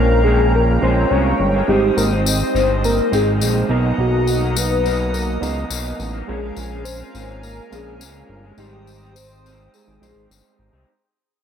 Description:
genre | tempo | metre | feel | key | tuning
indie pop, bedroom pop | 104 BPM | 4/4 | straight | Ab major | A4 = 440 Hz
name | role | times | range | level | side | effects
soft octave-layered synth lead | melody | 0.0-10.6 s | F#4 to D#5 | -20 LUFS | left 1 dB | phaser, ensemble chorus, digital delay
electric guitar through a small old amp | accompaniment | 0.0-10.9 s | Ab2 to Eb4 | -27 LUFS | left 1 dB | analog chorus, warbly pitch drift
soft electric-piano-like synth keys | accompaniment | 0.0-10.9 s | F#3 to G5 | -27 LUFS | right 6 dB | chorus
hollow soft pad | sustained chords | 0.0-10.9 s | Bb4 to Eb6 | -28 LUFS | equal | chorus
fat analog bass | bass | 0.0-10.9 s | G1 to Db2 | -20 LUFS | equal | none
tambourine | percussion | 2.0-10.4 s | none | -28 LUFS | left 8 dB | none
room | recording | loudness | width
light reverb, digital ambience | none | -15 LUFS | side -8 dB against mid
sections
0.0-10.9 A section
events
fade-out 0.0-10.9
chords
0.0 Bbm7; 1.7 Abmaj7; 3.7 Bmaj7; 6.3 Bbm7; 8.6 Abmaj7

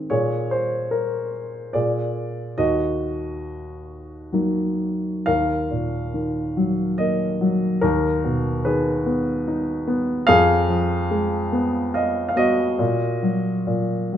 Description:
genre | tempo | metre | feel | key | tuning
classical, lyrical solo piano | 62-75 BPM | 3/4 | rubato | Eb dorian, Eb minor from 5.3 s | A4 = 440 Hz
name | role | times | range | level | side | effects
dark upright piano | solo | 0.0-14.2 s | Eb2 to F5 | -20 LUFS | equal | none
room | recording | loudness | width
moderate recital hall reverb, RT60 1.8 s | close, detailed microphones | -20 LUFS | side -10 dB against mid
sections
0.0-5.3 A section; 5.3-14.2 B section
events
none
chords
0.1 Bb7; 2.6 Ebm; 7.8 Abmadd9/Eb; 10.3 Fdim; 12.8 Ebm/Bb

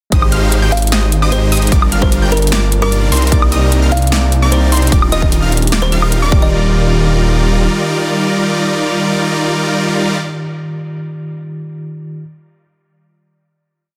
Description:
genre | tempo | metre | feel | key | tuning
future bass | 150 BPM | 4/4 | half-time | Eb major | A4 = 440 Hz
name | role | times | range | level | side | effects
tine electric piano | accompaniment | 0.1-12.2 s | C3 to D5 | -24 LUFS | equal | medium tremolo, sidechain pumping, dub echo
ethereal airy pad | sustained chords | 2.7-10.2 s | Eb3 to D5 | -29 LUFS | equal | none
unison pluck | arpeggios | 0.1-10.2 s | C6 to G6 | -26 LUFS | equal | sidechain pumping
supersaw chords | riff | 0.1-10.2 s | G3 to G5 | -20 LUFS | equal | sidechain pumping, dub echo
detuned saw bass | bass | 0.1-7.7 s | Eb1 to C2 | -16 LUFS | equal | chorus, sidechain pumping
big-room dance drum kit | drums | 0.1-6.2 s | hi-hat, snare drum, woodblock | -21 LUFS | equal | studio reverb
electronic kick drum | drums | 0.1-6.4 s | none | -15 LUFS | equal | studio reverb
kalimba | melody | 0.7-6.5 s | Bb4 to F5 | -25 LUFS | equal | sidechain pumping, delay
room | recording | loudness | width
light reverb | dense, heavily limited modern master | -13 LUFS | mono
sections
0.1-6.5 drop; 6.5-9.7 final note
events
drop 0.1-6.5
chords
0.1 Abmaj7; 1.7 Gm7; 3.1 Cm9; 4.9 Ebmaj9

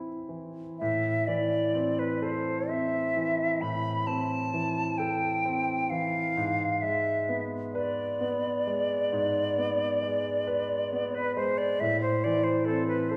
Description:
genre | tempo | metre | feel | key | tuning
classical, romantic duo for flute and grand piano | 44 BPM (dotted quarters) | 12/8 | rubato | unclear | A4 = 440 Hz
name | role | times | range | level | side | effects
clear concert grand piano | accompaniment | 0.0-13.2 s | G#2 to C5 | -33 LUFS | equal | none
silver concert flute | melody | 0.8-13.2 s | A4 to B5 | -30 LUFS | equal | none
room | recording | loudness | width
wet recital hall reverb, RT60 1.7 s | heard from further back in the room | -28 LUFS | mono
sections
0.8-13.2 A section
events
none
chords
0.0 Am (rootless); 0.8 Am; 6.4 G#dim; 11.8 Am

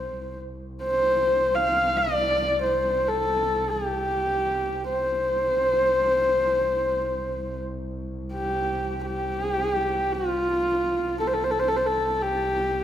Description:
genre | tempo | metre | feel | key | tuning
mongolian traditional, Mongolian folk | free time | none | none | C zhi mode | A4 = 439 Hz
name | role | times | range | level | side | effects
dark horsehead fiddle | melody | 0.0-12.8 s | F4 to F5 | -22 LUFS | equal | none
warm double bass | drone | 0.0-12.8 s | C2 | -34 LUFS | right 1 dB | none
room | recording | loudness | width
moderate scoring stage reverb, RT60 1.6 s | none | -22 LUFS | side -10 dB against mid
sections
0.0-12.8 A section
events
slowing down 11.0-12.8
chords
none

